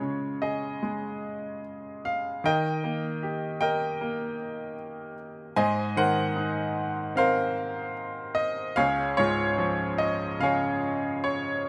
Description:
classical, lyrical solo piano; 75 BPM; 4/4; rubato; Db major; A4 = 441 Hz
bright baby grand piano; solo; 0.0-11.7 s; Db2 to Ab5; -28 LUFS; equal
light reverb; close, detailed microphones; -28 LUFS; mono
0.0-11.7 A section
0.0 Db; 2.4 Eb; 5.6 Abadd9; 8.8 Db
0.03 0.84 1.65 | 2.44 3.22 4.00 4.78 | 5.57 6.36 7.16 7.96 | 8.78 9.59 10.40 11.24

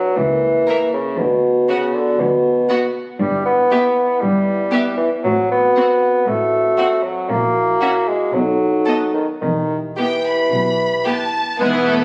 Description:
quick classical-period movement for symphony orchestra; 108-120 BPM; 4/4; rubato; E minor from 3.2 s; A4 = 439 Hz
warm bassoon; accompaniment; 0.0-12.0 s; B2 to B3; -19 LUFS; equal
dark French horn section; sustained chords; 0.0-12.0 s; G#2 to B4; -26 LUFS; equal
warm chamber cello section; bass; 0.2-12.0 s; C#2 to B2; -26 LUFS; equal
warm chamber double bass section; bass; 0.2-12.0 s; E1 to D2; -34 LUFS; equal
rich chamber violin section; melody; 0.7-12.0 s; G#4 to B5; -27 LUFS; equal
rich chamber violin section; second line; 0.7-12.0 s; B3 to A#4; -27 LUFS; equal
rich chamber viola section; accompaniment; 0.7-12.0 s; E3 to C#4; -26 LUFS; equal
bright clarinet; second line; 11.6-12.0 s; G#3 to A3; -26 LUFS; equal
mellow concert flute; second line; 11.6-12.0 s; F#6; -29 LUFS; equal
warm oboe; second line; 11.6-12.0 s; B4; -31 LUFS; equal
moderate recital hall reverb, RT60 1.6 s; recorded on a phone in the room, studio ambience, compression; -17 LUFS; mono
0.0-11.6 A section
0.2 A#dim/C#; 1.2 Bm/D; 3.2 Em/G; 5.2 F#dim/A; 7.3 F#7/A#; 8.3 B7; 9.4 Em
0.17 0.68 | 1.19 1.69 2.20 2.71 | 3.21 3.71 4.22 4.72 | 5.24 5.77 6.27 6.78 | 7.30 7.82 8.34 8.87 | 9.42 9.97 10.52 11.06 | 11.60

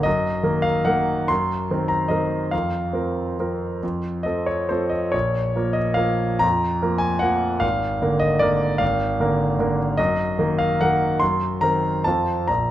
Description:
classical, piano waltz; 129-159 BPM; 3/4; rubato; A4 = 440 Hz
clear concert grand piano; solo; 0.0-12.7 s; Ab1 to C6; -19 LUFS; equal
light reverb; close, detailed microphones; -19 LUFS; side -13 dB against mid
0.0-12.7 A section
0.1 Ebm/Gb; 1.3 Cm7b5/Gb; 2.5 Fsus4; 3.8 F; 5.1 Bbm; 7.6 Bb7/Ab; 10.0 Ebm/Gb; 11.2 Cm7b5/Gb; 12.0 F
| 0.06 0.45 0.86 | 1.29 1.70 2.11 | 2.52 2.94 3.39 | 3.82 4.25 4.70 | 5.14 5.56 5.99 | 6.43 6.83 7.23 | 7.63 8.02 8.42 | 8.81 9.19 9.59 | 9.98 10.38 10.80 | 11.21 11.61 12.04 | 12.48

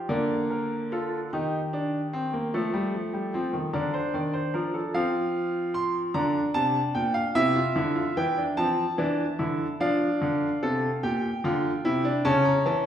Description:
classical, baroque-style 3-part fugue for grand piano; 49 BPM (dotted quarters); 6/8; straight; Bb major, D minor from 9.8 s; A4 = 440 Hz
clear grand piano; solo; 0.0-12.9 s; Bb2 to C6; -24 LUFS; equal
wet recital hall reverb, RT60 1.4 s; heard from further back in the room; -24 LUFS; side -9 dB against mid
0.1-9.8 A section; 9.8-12.9 B section
0.1 Bb/D; 1.3 Eb; 2.5 F7; 3.7 Bb/D; 4.9 F5; 6.1 Bb; 7.4 C; 8.6 F; 9.8 Dm; 11.0 Gm/Bb; 12.3 A/C#
| 0.10 1.33 | 2.54 3.73 | 4.94 6.14 | 7.35 8.58 | 9.81 11.04 | 12.26

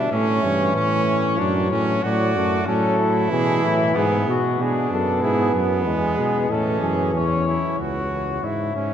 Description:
classical, imitative canzona for brass ensemble; 94 BPM; 4/4; straight; A4 = 440 Hz
dark cornet; melody; 0.0-8.9 s; E4 to E5; -24 LUFS; left 4 dB
clear trumpet; second line; 0.0-8.9 s; B3 to F#4; -25 LUFS; right 3 dB
clear trombone; accompaniment; 0.0-7.8 s; E3 to B3; -25 LUFS; right 1 dB
clear bass trombone; bass; 0.0-8.9 s; C#2 to B2; -23 LUFS; right 1 dB
wet cathedral reverb, RT60 4.2 s; dark, warm production; -18 LUFS; side -9 dB against mid
0.0-7.8 A section; 7.8-8.9 B section
0.1 A; 1.4 D/F#; 2.7 A; 3.9 G#dim; 5.2 E; 6.5 A; 7.8 C#m
| 0.12 0.76 1.40 2.04 | 2.67 3.31 3.95 4.59 | 5.22 5.86 6.50 7.14 | 7.79 8.43

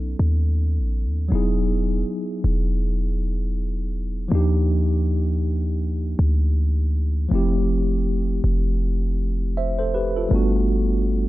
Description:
contemporary R&B; 80 BPM; 4/4; swing 58% on 16ths; A4 = 440 Hz
mellow tine electric piano; accompaniment; 0.0-11.3 s; F3 to E5; -25 LUFS; equal; medium stereo tremolo
warm 808-style bass; bass; 0.0-11.3 s; E1 to D#2; -21 LUFS; equal
digital ambience; -20 LUFS; side -17 dB against mid
0.0-1.3 A section; 1.3-11.3 B section
0.0 B7; 1.3 Emaj9; 4.3 Ebmaj9; 7.3 Fmaj9; 10.3 Gmaj9
0.57 | 1.32 2.07 2.82 3.57 | 4.32 5.07 5.82 6.57 | 7.32 8.07 8.82 9.57 | 10.32 11.07

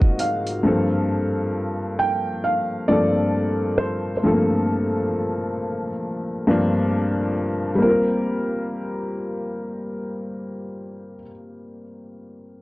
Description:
lo-fi hip hop; 67 BPM; 4/4; swing 62% on 16ths; G minor; A4 = 440 Hz
felt-muted upright piano; melody; 0.0-11.2 s; Bb4 to G5; -25 LUFS; right 1 dB; low-pass filter
dark upright piano; accompaniment; 0.0-12.6 s; G2 to Bb4; -22 LUFS; left 1 dB; low-pass filter
dusty soul sampler-style drum kit; drums; 0.0-0.6 s; hi-hat, kick drum; -18 LUFS; equal; overdrive
moderate studio reverb, RT60 0.6 s; dark, warm production; -20 LUFS; side -19 dB against mid
0.0-7.8 A section; 7.8-11.4 B section
0.0 Ab13; 0.6 Gm11; 7.8 Gm7
| 0.65 1.54 2.44 3.33 | 4.23 5.12 6.02 6.92 | 7.81 8.71 9.60 10.50

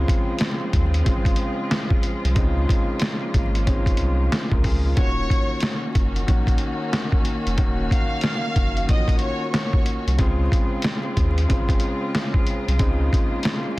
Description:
hip hop, boom-bap hip-hop; 92 BPM; 4/4; swing 63% on 16ths; Db major; A4 = 436 Hz
dark baby grand piano; accompaniment; 0.0-13.8 s; Db3 to Bb4; -27 LUFS; left 1 dB; high-pass filter, low-pass filter
rich studio string section; sustained chords; 0.0-13.8 s; Db3 to Gb4; -32 LUFS; equal; high-pass filter, low-pass filter
warm sub bass; bass; 0.0-13.1 s; Eb1 to Eb2; -22 LUFS; equal
trip hop sampler-style drum kit; drums; 0.1-13.6 s; hi-hat, kick drum, snare drum; -21 LUFS; equal
warm symphonic violin section; melody; 5.0-9.8 s; Db5 to F6; -30 LUFS; equal; high-pass filter, low-pass filter, digital delay
light reverb; dense, heavily limited modern master, vinyl crackle; -19 LUFS; side -20 dB against mid
0.0-13.8 A section
0.0 Dbmaj7; 5.0 Ebm7; 10.2 Dbmaj7
0.41 1.06 1.71 | 2.36 3.02 3.67 4.32 | 4.97 5.62 6.28 6.93 | 7.58 8.23 8.88 9.54 | 10.19 10.84 11.49 12.15 | 12.80 13.45

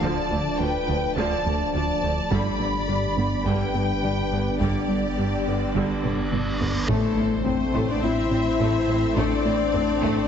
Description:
cinematic, hybrid orchestral and electronic film score; 105 BPM; 4/4; straight; A minor; A4 = 440 Hz
clear symphonic violin section; melody; 0.0-10.3 s; A4 to B5; -31 LUFS; left 2 dB
clear symphonic violin section; second line; 0.0-10.3 s; A3 to D5; -31 LUFS; left 2 dB
clear symphonic viola section; accompaniment; 0.0-10.3 s; D3 to D4; -33 LUFS; right 1 dB
dark French horn section; sustained chords; 0.0-10.3 s; F3 to E4; -28 LUFS; left 4 dB
deep dark ambient pad; sustained chords; 0.0-10.3 s; F3 to D5; -31 LUFS; right 2 dB; chorus, built-in reverb
harp-like synth pluck; arpeggios; 0.0-10.2 s; D3 to G4; -34 LUFS; right 5 dB
smooth synth bass; riff; 0.0-10.2 s; D2 to A3; -29 LUFS; left 1 dB
clear symphonic double bass section; bass; 0.0-10.1 s; G1 to D2; -33 LUFS; right 4 dB
punchy sub bass; bass; 0.0-10.3 s; D1 to A1; -33 LUFS; right 1 dB
rich symphonic cello section; bass; 0.0-10.1 s; D2 to A2; -34 LUFS; right 3 dB
taiko ensemble; drums; 2.3-10.3 s; -33 LUFS; equal
reverse cymbal and impact; sound effects; 5.3-9.2 s; -34 LUFS; right 1 dB
moderate scoring stage reverb, RT60 1.9 s; heavily compressed radio sound, nothing above 7.9 kHz; -21 LUFS; side -8 dB against mid
0.0-6.9 A section; 6.9-10.3 B section
reverse cymbal 5.3-6.9; drum fill 6.0-6.9; impact 6.9-9.2
0.0 Dm; 2.3 G; 6.9 Am
| 0.03 0.60 1.17 1.74 | 2.31 2.89 3.46 4.03 | 4.60 5.17 5.74 6.32 | 6.89 7.46 8.03 8.60 | 9.17 9.74

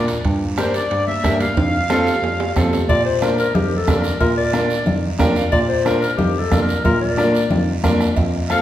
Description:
latin, cumbia; 182 BPM; 4/4; straight; A4 = 441 Hz
accordion; melody; 0.0-2.5 s; C5 to F5; -22 LUFS; left 1 dB
bright upright piano; accompaniment; 0.0-8.6 s; C4 to G5; -23 LUFS; equal
bell-like tine electric piano; bass; 0.0-8.6 s; F2 to Bb2; -22 LUFS; equal
guiro; percussion; 0.1-8.6 s; -33 LUFS; right 4 dB
timbales and cowbell; percussion; 0.1-8.3 s; -28 LUFS; right 2 dB
bombo; percussion; 0.2-8.6 s; -23 LUFS; right 2 dB
congas; percussion; 0.4-8.6 s; -24 LUFS; left 2 dB
breathy clarinet; second line; 2.9-8.6 s; G4 to F5; -20 LUFS; left 3 dB
wet recital hall reverb, RT60 1.5 s; recorded in a church or concert hall; -15 LUFS; side -12 dB against mid
0.0-2.9 A section; 2.9-8.6 B section
drum fill 1.6-2.9; clarinet solo 2.9-8.6; upright piano fill 5.0-5.5
0.2 Gm; 1.6 F; 2.9 Bb
| 0.24 0.58 0.91 1.24 | 1.57 1.90 2.23 2.56 | 2.89 3.22 3.55 3.88 | 4.21 4.54 4.87 5.20 | 5.53 5.86 6.19 6.52 | 6.85 7.18 7.51 7.84 | 8.17 8.50

